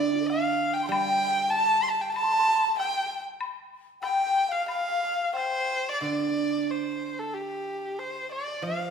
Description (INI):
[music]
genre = chinese traditional, Chinese chamber ensemble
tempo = 95 BPM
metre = 4/4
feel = rubato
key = G shang mode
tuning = A4 = 440 Hz
[part]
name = warm erhu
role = melody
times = 0.0-8.9 s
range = G4 to C6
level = -26 LUFS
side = right 1 dB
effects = none
[part]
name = mellow low xiao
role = second line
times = 0.0-5.9 s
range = D4 to C6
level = -29 LUFS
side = left 6 dB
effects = none
[part]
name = guzheng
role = accompaniment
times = 0.0-8.9 s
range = D3 to G3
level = -30 LUFS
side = right 7 dB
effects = none
[part]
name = woodblock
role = percussion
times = 0.3-5.5 s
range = none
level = -38 LUFS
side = left 4 dB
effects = none
[sound]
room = moderate recital hall reverb, RT60 1.6 s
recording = recorded in a church or concert hall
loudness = -24 LUFS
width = side -6 dB against mid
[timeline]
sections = 0.0-6.0 A section; 6.0-8.9 B section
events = none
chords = none